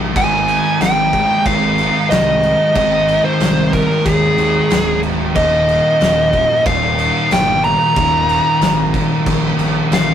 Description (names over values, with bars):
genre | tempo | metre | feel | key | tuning
stoner and doom metal | 92 BPM | 4/4 | straight | unclear | A4 = 440 Hz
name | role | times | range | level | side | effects
tonewheel organ | sustained chords | 0.0-10.1 s | C3 to Bb4 | -30 LUFS | left 2 dB | overdrive
thick fuzz guitar | riff | 0.0-10.1 s | C2 to Ab3 | -22 LUFS | left 4 dB | distortion
thick fuzz guitar | riff | 0.0-10.1 s | C2 to Ab3 | -20 LUFS | right 4 dB | distortion
fuzz picked electric bass | bass | 0.0-10.1 s | D1 to Eb2 | -23 LUFS | right 1 dB | overdrive
fuzz lead guitar | melody | 0.2-10.1 s | Ab4 to Bb5 | -15 LUFS | equal | distortion
oversized low-tuned drum kit | drums | 0.2-10.1 s | crash cymbal, kick drum, snare drum | -19 LUFS | equal | none
room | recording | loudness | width
light reverb | rough rehearsal-room recording, tube saturation | -12 LUFS | side -9 dB against mid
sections
0.0-10.1 A section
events
none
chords
0.2 Ab; 5.4 Eb5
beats
| 0.16 0.81 1.46 2.11 | 2.76 3.41 4.06 4.71 | 5.36 6.01 6.67 7.32 | 7.97 8.62 9.27 9.92